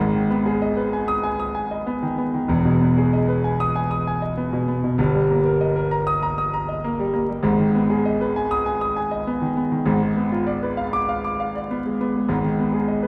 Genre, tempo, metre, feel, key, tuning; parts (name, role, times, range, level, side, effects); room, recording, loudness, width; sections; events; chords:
classical, virtuoso piano study; 98 BPM; 4/4; rubato; G# minor; A4 = 441 Hz
clear concert grand piano; solo; 0.0-13.1 s; E1 to D#6; -22 LUFS; equal
wet recital hall reverb, RT60 1.4 s; heard from further back in the room, vinyl crackle; -22 LUFS; mono
0.0-13.1 A section
0.0 G#m; 2.5 Emaj7; 5.0 D#/G; 7.4 G#m; 9.9 G#dim7; 12.3 G#m